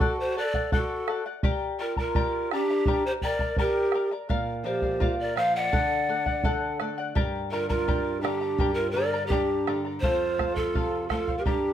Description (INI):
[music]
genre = andean folk, Andean ensemble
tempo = 84 BPM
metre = 2/4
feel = straight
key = G minor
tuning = A4 = 440 Hz
[part]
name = breathy large pan pipes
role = melody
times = 0.0-11.7 s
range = G4 to F#5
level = -28 LUFS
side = equal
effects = plate reverb
[part]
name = breathy mellow large quena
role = second line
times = 0.0-11.7 s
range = D4 to Eb5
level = -31 LUFS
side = right 2 dB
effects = none
[part]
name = charango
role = accompaniment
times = 0.0-11.7 s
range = G4 to Bb5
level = -32 LUFS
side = left 4 dB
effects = none
[part]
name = bombo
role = percussion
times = 0.0-11.6 s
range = none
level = -28 LUFS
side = right 1 dB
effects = none
[part]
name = flamenco guitar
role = accompaniment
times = 4.3-11.7 s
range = F2 to A4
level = -34 LUFS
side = right 1 dB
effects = none
[sound]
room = wet studio ambience, RT60 0.5 s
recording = none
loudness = -24 LUFS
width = side -10 dB against mid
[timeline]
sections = 0.0-10.0 A section; 10.0-11.7 B section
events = none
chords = 0.0 D; 1.4 Gm; 4.3 Bb; 5.7 D; 7.2 Gm; 10.0 F